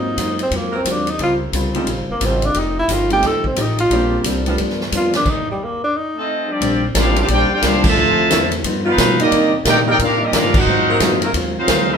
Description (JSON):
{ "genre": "jazz, big band swing", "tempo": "177 BPM", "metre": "4/4", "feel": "swing 63% on 8ths", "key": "Bb major", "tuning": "A4 = 441 Hz", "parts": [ { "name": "breathy tenor saxophone", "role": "melody", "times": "0.0-6.3 s", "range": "G3 to A4", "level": "-19 LUFS", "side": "equal", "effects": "none" }, { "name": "vintage hollow-body jazz guitar", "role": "accompaniment", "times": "0.0-11.9 s", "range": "G2 to G4", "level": "-23 LUFS", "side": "left 2 dB", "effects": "none" }, { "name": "warm concert grand piano", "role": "accompaniment", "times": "0.0-4.6 s", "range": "Gb3 to G4", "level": "-24 LUFS", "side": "right 1 dB", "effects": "none" }, { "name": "upright bass", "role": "bass", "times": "0.0-12.0 s", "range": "F1 to C3", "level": "-23 LUFS", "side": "equal", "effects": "none" }, { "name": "swinging big-band drum kit", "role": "drums", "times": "0.2-11.8 s", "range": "crash cymbal, hi-hat, kick drum, ride cymbal, snare drum", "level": "-20 LUFS", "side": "equal", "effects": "none" }, { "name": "mellow saxophone section", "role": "sustained chords", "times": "0.7-1.8, 3.9-4.6, 7.2-11.3 s", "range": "D3 to Bb4", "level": "-25 LUFS", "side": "equal", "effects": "none" }, { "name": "brilliant trumpet section", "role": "melody", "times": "6.2-12.0 s", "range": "A#3 to A5", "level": "-18 LUFS", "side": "equal", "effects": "none" }, { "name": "mellow trombone section", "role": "second line", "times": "6.2-12.0 s", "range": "C3 to G4", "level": "-20 LUFS", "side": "right 2 dB", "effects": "none" } ], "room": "wet studio reverb, RT60 0.6 s", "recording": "band playing live in one room", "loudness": "-14 LUFS", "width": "side -7 dB against mid", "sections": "0.0-6.6 A section; 6.6-12.0 B section", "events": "tenor saxophone solo 0.0-6.6; stop 5.3-6.6; band accent 7.8, 10.5", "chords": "0.0 Ab13; 1.2 Dbmaj9#11; 2.5 F9; 3.9 Bb69; 4.6 G7; 5.3 N.C.; 5.9 F7; 6.6 Bb69; 8.0 Dm9; 8.6 G7alt; 9.3 Cm9; 10.7 Ab13" }